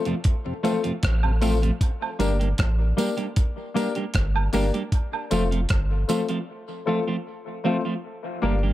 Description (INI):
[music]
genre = dub reggae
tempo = 77 BPM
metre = 4/4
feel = straight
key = G minor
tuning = A4 = 441 Hz
[part]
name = clean electric guitar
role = accompaniment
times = 0.1-8.7 s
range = F3 to G4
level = -28 LUFS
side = right 3 dB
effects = dub echo
[part]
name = tonewheel organ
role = accompaniment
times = 0.1-1.7 s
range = F2 to C4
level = -36 LUFS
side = left 1 dB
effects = stopped rotary speaker, dub echo
[part]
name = dusty soul sampler-style drum kit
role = drums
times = 0.1-6.5 s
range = hi-hat, kick drum, rim click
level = -24 LUFS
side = equal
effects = none
[part]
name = dark grand piano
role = stabs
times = 0.6-8.6 s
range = A3 to Bb4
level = -28 LUFS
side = left 5 dB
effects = dub echo
[part]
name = tambourine and woodblock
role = percussion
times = 0.6-6.3 s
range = none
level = -34 LUFS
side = right 7 dB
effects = dub echo
[part]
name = warm sub bass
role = bass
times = 1.0-8.7 s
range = F1 to A1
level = -22 LUFS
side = equal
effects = none
[sound]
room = light reverb, digital ambience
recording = none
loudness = -22 LUFS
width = side -14 dB against mid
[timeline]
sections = 0.0-8.0 A section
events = break 6.5-8.0; part muted 8.0-8.7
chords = 0.0 F; 1.8 Gm; 4.9 F; 8.0 Gm